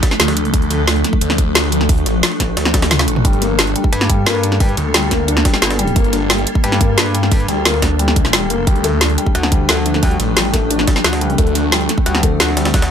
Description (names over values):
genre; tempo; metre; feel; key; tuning
dark technical drum and bass; 177 BPM; 4/4; straight; G minor; A4 = 441 Hz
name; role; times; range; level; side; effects
swarming drone; sustained chords; 0.0-12.9 s; F3 to A4; -21 LUFS; equal; built-in reverb, sidechain pumping
drum and bass drum kit; drums; 0.0-12.8 s; hi-hat, snare drum, toms; -17 LUFS; equal; none
electronic kick drum; drums; 0.0-12.8 s; none; -16 LUFS; equal; none
jungle sampler-style drum kit; drums; 0.0-12.9 s; hi-hat, snare drum; -26 LUFS; right 1 dB; none
phased detuned saw bass; bass; 0.2-11.9 s; F1 to D2; -19 LUFS; equal; phaser, overdrive, sidechain pumping
felt-muted upright piano; arpeggios; 3.2-12.7 s; G3 to D4; -21 LUFS; left 4 dB; sidechain pumping, ping-pong delay
metallic wobble bass; bass; 3.9-12.9 s; G1 to G2; -18 LUFS; equal; chorus
room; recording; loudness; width
little or no reverb; none; -12 LUFS; side -8 dB against mid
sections
0.0-12.9 A section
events
drum fill 2.7-3.2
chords
0.0 Dm; 3.2 Gmadd9; 8.7 Dm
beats
0.20 | 0.54 0.88 1.21 1.55 | 1.89 2.23 2.57 2.91 | 3.25 3.59 3.93 4.26 | 4.60 4.94 5.28 5.62 | 5.96 6.30 6.64 6.98 | 7.32 7.66 7.99 8.33 | 8.67 9.01 9.35 9.69 | 10.03 10.37 10.71 11.04 | 11.38 11.72 12.06 12.40 | 12.74